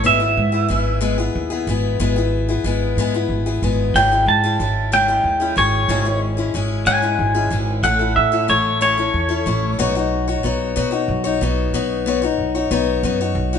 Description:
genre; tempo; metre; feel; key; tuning
folk rock and heartland rock; 62 BPM (dotted quarters); 6/8; straight; E major; A4 = 440 Hz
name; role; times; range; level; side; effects
twangy electric guitar; melody; 0.0-10.7 s; C#5 to A5; -17 LUFS; right 1 dB; spring reverb
picked steel-string acoustic guitar; accompaniment; 0.0-13.6 s; G#2 to C#5; -21 LUFS; left 6 dB; none
upright bass; bass; 0.0-13.6 s; G#1 to B2; -22 LUFS; right 1 dB; none
room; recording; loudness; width
moderate large studio reverb, RT60 1.4 s; band playing live in one room, nothing above 10.3 kHz; -16 LUFS; side -7 dB against mid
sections
0.0-11.7 A section; 11.7-13.6 B section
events
clean electric guitar solo 0.0-11.7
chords
0.0 E/G#; 3.9 C#m/G#; 7.8 A; 9.8 Badd9

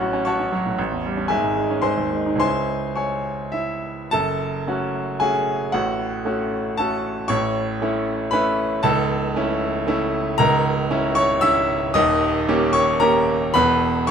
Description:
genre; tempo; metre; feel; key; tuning
classical, virtuoso piano study; 114 BPM; 3/4; rubato; C# minor, F# minor from 4.1 s; A4 = 440 Hz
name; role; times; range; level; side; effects
clear grand piano; solo; 0.0-14.1 s; C#1 to F#6; -18 LUFS; equal; none
room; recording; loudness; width
moderate stone room reverb, RT60 1.3 s; none; -19 LUFS; side -7 dB against mid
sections
0.0-4.1 A section; 4.1-14.1 B section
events
none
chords
0.0 F#m/A; 0.8 A7; 1.3 C#m/G#; 1.8 G#; 2.4 C#m; 4.1 F#m; 5.7 F#m/A; 7.3 A; 8.8 A/C#; 10.4 A#dim/C#; 12.0 D#7; 13.5 E5

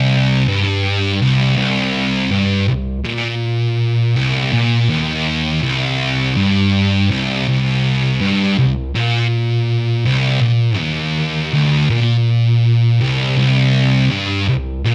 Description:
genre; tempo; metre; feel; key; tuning
metal; 81 BPM; 4/4; straight; C minor; A4 = 440 Hz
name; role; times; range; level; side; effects
thick fuzz guitar; solo; 0.0-14.9 s; C2 to Bb2; -16 LUFS; equal; distortion
room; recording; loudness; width
moderate large studio reverb, RT60 1.3 s, digital ambience; none; -16 LUFS; mono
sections
0.0-14.9 A section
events
none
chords
none

